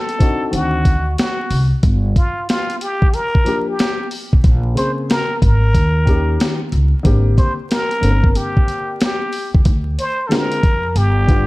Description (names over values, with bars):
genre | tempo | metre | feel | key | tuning
hip hop, jazz-hop | 92 BPM | 4/4 | swing 66% on 16ths | unclear | A4 = 442 Hz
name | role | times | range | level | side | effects
trumpet with plunger mute | melody | 0.0-11.5 s | F4 to C5 | -21 LUFS | equal | none
boom bap sampler-style drum kit | drums | 0.1-11.5 s | hi-hat, kick drum, snare drum | -16 LUFS | equal | none
dark grand piano | accompaniment | 0.2-11.5 s | Db3 to Bb4 | -22 LUFS | left 2 dB | none
upright bass | bass | 0.5-11.5 s | G1 to F2 | -16 LUFS | equal | none
room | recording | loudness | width
studio reverb | dark, warm production, vinyl crackle | -14 LUFS | side -20 dB against mid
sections
0.0-11.5 A section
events
none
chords
0.0 Adim; 1.8 Gm7; 4.4 Bbm9; 5.7 Eb7; 7.0 Abmaj9#11 (rootless); 9.7 Dm7b5; 11.0 G7